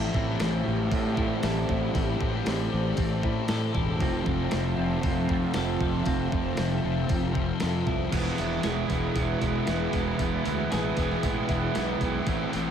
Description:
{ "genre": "rock, shoegaze and dream pop", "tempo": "116 BPM", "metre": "4/4", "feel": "straight", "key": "unclear", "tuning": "A4 = 442 Hz", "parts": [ { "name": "phased analog pad", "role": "sustained chords", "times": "0.0-12.7 s", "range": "F4 to C6", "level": "-35 LUFS", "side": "equal", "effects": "phaser, chorus" }, { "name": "clean electric guitar", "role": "arpeggios", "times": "0.0-12.7 s", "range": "G3 to A4", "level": "-36 LUFS", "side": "equal", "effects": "wide subtle chorus, analog delay" }, { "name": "raw garage guitar", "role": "riff", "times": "0.0-12.7 s", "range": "A2 to F4", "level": "-31 LUFS", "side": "right 8 dB", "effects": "overdrive, reverse reverb" }, { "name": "thick fuzz guitar", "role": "riff", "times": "0.0-12.7 s", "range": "E2 to A3", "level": "-30 LUFS", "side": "left 7 dB", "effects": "distortion, ensemble chorus" }, { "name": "fuzz fingered electric bass", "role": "bass", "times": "0.0-12.7 s", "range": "E1 to A2", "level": "-31 LUFS", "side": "equal", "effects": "overdrive" }, { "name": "crisp 8-bit digital drum machine", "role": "drums", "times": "0.1-12.6 s", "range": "crash cymbal, hi-hat, kick drum, snare drum", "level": "-31 LUFS", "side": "equal", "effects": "none" } ], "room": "moderate huge ambient reverb, RT60 5.5 s", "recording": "dreamy mix soaked in reverb", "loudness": "-24 LUFS", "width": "side -8 dB against mid", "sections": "0.0-8.1 A section; 8.1-12.7 B section", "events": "none", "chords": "0.0 Am7; 4.0 Fmaj7; 8.1 E" }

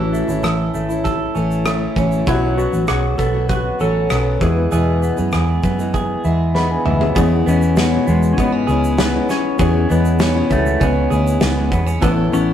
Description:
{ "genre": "acoustic pop", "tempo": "98 BPM", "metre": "4/4", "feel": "straight", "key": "unclear", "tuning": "A4 = 440 Hz", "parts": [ { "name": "clean lap steel guitar", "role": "melody", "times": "0.0-12.5 s", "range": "G#3 to B4", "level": "-21 LUFS", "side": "left 2 dB", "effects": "none" }, { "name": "picked steel-string acoustic guitar", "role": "accompaniment", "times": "0.0-12.5 s", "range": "E2 to G#4", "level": "-24 LUFS", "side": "left 3 dB", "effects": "none" }, { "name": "reed electric piano", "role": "accompaniment", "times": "0.0-12.5 s", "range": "G#3 to B5", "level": "-26 LUFS", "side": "left 3 dB", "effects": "fast tremolo" }, { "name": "direct-recorded clean electric guitar", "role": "arpeggios", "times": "0.0-12.5 s", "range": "E3 to A4", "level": "-23 LUFS", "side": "right 3 dB", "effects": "none" }, { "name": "vintage muted fingered electric bass", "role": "bass", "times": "0.0-12.5 s", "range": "G#1 to G#2", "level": "-18 LUFS", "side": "equal", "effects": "none" }, { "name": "loose indie drum kit", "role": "drums", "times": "0.1-12.5 s", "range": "kick drum, rim click, shaker, snare drum, toms", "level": "-22 LUFS", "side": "equal", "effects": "none" } ], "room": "moderate stone room reverb, RT60 1.0 s", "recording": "rough rehearsal-room recording", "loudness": "-14 LUFS", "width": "side -10 dB against mid", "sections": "0.0-7.2 A section; 7.2-12.5 B section", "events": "reed electric piano fill 6.2-7.2; drum fill 6.5-7.2", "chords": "0.0 A; 2.3 Bsus2; 4.4 E; 7.2 E6; 12.0 Aadd9" }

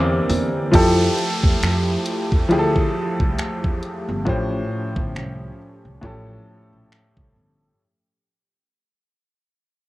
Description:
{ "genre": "contemporary R&B", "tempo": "68 BPM", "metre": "4/4", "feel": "swing 58% on 16ths", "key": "F major", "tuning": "A4 = 444 Hz", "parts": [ { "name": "clear grand piano", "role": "accompaniment", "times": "0.0-7.8 s", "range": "A2 to D5", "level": "-22 LUFS", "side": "left 1 dB", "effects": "cassette tape" }, { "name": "warm analog pad", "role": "sustained chords", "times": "0.0-7.8 s", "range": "D3 to G4", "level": "-27 LUFS", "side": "right 2 dB", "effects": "chorus, sidechain pumping, cassette tape" }, { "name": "upright bass", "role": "bass", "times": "0.0-7.7 s", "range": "G1 to F2", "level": "-24 LUFS", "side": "equal", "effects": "none" }, { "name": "smooth R&B drum kit", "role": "drums", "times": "0.3-7.3 s", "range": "finger snaps, hi-hat, kick drum", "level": "-21 LUFS", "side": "equal", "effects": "cassette tape" }, { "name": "downlifter", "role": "sound effects", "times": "0.7-7.8 s", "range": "none", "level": "-30 LUFS", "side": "right 1 dB", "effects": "none" } ], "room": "light reverb", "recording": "home recording on cassette", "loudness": "-18 LUFS", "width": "side -17 dB against mid", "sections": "0.7-7.8 A section", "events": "break 0.0-0.7; fade-out 0.7-7.8", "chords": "0.0 C7/E; 0.7 Fmaj9; 4.3 A7alt" }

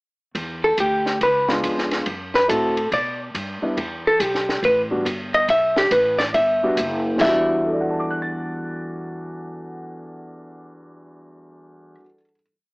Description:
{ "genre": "jazz, small-group swing and bop", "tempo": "140 BPM", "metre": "4/4", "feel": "swing 66% on 8ths", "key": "E minor", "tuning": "A4 = 440 Hz", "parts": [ { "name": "upright bass", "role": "bass", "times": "0.3-11.9 s", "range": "F#1 to B2", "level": "-31 LUFS", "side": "equal", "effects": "none" }, { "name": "compact cocktail drum kit", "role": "drums", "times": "0.3-7.3 s", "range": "hi-hat, kick drum, ride cymbal, snare drum, splash cymbal", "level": "-27 LUFS", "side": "equal", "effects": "cassette tape" }, { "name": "vintage hollow-body jazz guitar", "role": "melody", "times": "0.6-11.9 s", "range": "G4 to E5", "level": "-18 LUFS", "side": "equal", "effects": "none" }, { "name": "warm grand piano", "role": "accompaniment", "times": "1.5-12.4 s", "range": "E2 to A6", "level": "-25 LUFS", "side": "equal", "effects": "cassette tape" } ], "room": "light reverb", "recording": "home recording on cassette, AM radio sound", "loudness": "-18 LUFS", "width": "side -29 dB against mid", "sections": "0.3-7.2 A section; 7.2-10.7 final chord", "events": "none", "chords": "0.3 Em7; 1.2 C#7b9; 2.1 F#m7b5; 2.9 G6; 3.8 Emadd9; 7.2 Em9" }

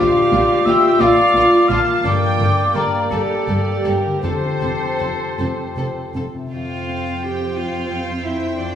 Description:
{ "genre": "cinematic, emotional film score for orchestra", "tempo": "52-60 BPM (dotted quarters)", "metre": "6/8", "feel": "rubato", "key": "unclear", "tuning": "A4 = 440 Hz", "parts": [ { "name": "warm symphonic violin section", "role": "melody", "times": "0.0-8.8 s", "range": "F4 to G5", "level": "-30 LUFS", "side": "left 3 dB", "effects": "none" }, { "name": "breathy clarinet", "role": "second line", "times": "0.0-6.1 s", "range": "G4 to F5", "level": "-25 LUFS", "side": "equal", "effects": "none" }, { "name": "mellow hollow concert flute", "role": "second line", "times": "0.0-6.1 s", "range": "G5 to F6", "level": "-20 LUFS", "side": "equal", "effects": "none" }, { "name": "warm studio violin section", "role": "second line", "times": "0.0-8.8 s", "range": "Bb4 to A5", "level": "-26 LUFS", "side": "right 1 dB", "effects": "none" }, { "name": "warm studio viola section", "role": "accompaniment", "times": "0.0-8.8 s", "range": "Bb3 to C5", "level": "-24 LUFS", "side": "right 2 dB", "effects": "none" }, { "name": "warm French horn section", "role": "sustained chords", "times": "0.0-6.1 s", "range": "Bb3 to G4", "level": "-21 LUFS", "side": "left 3 dB", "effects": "none" }, { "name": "concert harp", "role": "arpeggios", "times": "0.0-8.8 s", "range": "F2 to D6", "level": "-27 LUFS", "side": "left 4 dB", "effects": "none" }, { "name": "dark chamber cello section", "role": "bass", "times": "0.0-8.8 s", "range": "F2 to Bb2", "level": "-26 LUFS", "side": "right 1 dB", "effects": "none" }, { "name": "dark symphonic double bass section", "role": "bass", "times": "0.0-6.2 s", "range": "F1 to Bb1", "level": "-26 LUFS", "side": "right 1 dB", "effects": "none" }, { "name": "rich cello", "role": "melody", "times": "6.5-8.8 s", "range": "D4 to G4", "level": "-26 LUFS", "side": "right 2 dB", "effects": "none" } ], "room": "wet scoring stage reverb, RT60 2.1 s", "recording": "studio ambience", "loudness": "-15 LUFS", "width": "side -9 dB against mid", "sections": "0.0-6.5 A section; 6.5-8.8 B section", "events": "none", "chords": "0.0 Bb; 2.0 Gmadd9; 4.2 F; 6.5 Fsus2" }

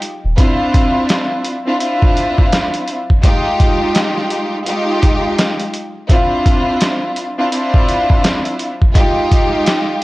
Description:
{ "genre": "hip hop, boom-bap hip-hop", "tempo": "84 BPM", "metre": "4/4", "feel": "swing 61% on 16ths", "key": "D minor", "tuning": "A4 = 442 Hz", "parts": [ { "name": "trip hop sampler-style drum kit", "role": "drums", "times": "0.0-9.9 s", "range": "hi-hat, kick drum, snare drum", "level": "-14 LUFS", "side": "equal", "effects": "none" }, { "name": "warm studio string section", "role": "accompaniment", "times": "0.4-10.0 s", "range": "Ab3 to G4", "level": "-16 LUFS", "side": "equal", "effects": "high-pass filter, low-pass filter" } ], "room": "studio ambience", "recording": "dry, gritty hardware recording", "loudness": "-12 LUFS", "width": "side -19 dB against mid", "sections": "0.4-10.0 A section", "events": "none", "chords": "0.4 Dm9; 3.2 Fm9; 6.1 Dm9; 8.9 Fm9" }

